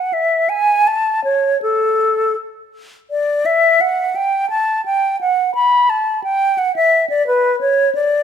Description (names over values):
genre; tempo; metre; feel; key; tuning
classical, baroque-style fantasia for unaccompanied flute; 79-88 BPM; 3/4; rubato; A major, D major from 3.1 s; A4 = 439 Hz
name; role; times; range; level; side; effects
mellow silver concert flute; solo; 0.0-8.2 s; A4 to B5; -14 LUFS; equal; none
room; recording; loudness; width
moderate stone room reverb, RT60 1.4 s; none; -14 LUFS; side -8 dB against mid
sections
0.0-3.1 A section; 3.1-8.2 A section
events
none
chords
none